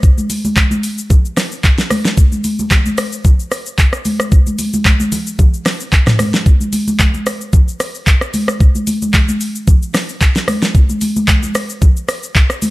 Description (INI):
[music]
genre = amapiano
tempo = 112 BPM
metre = 4/4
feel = swing 55% on 16ths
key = none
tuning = none
[part]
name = smooth R&B drum kit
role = drums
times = 0.0-12.7 s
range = handclaps, hi-hat, kick drum, rim click, shaker, snare drum, toms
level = -12 LUFS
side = equal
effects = none
[part]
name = congas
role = percussion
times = 0.2-12.7 s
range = none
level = -18 LUFS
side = equal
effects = none
[sound]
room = digital ambience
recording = none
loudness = -11 LUFS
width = side -19 dB against mid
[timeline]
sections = 0.0-12.7 A section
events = none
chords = none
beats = | 0.03 0.57 1.10 1.64 | 2.18 2.71 3.25 3.78 | 4.32 4.85 5.39 5.93 | 6.46 7.00 7.53 8.07 | 8.60 9.14 9.68 10.21 | 10.75 11.28 11.82 12.35